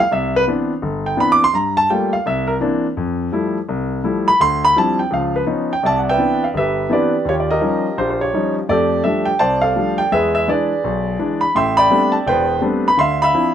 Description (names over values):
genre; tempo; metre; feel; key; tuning
solo jazz; 168 BPM; 4/4; swing 64% on 8ths; C major; A4 = 440 Hz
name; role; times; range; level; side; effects
warm concert grand piano; solo; 0.0-13.5 s; E1 to D6; -15 LUFS; equal; none
room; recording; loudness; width
light reverb; none; -15 LUFS; side -9 dB against mid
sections
0.0-5.8 A section; 5.8-13.5 B section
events
grand piano solo 0.0-5.8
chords
0.1 Cmaj9; 1.5 Gm9; 2.3 C9; 3.0 Fmaj9; 4.4 Dm11; 5.1 Db9; 5.8 Cmaj9; 7.3 Eb9; 8.7 F69; 10.1 E7; 11.5 Am11; 13.0 Dm9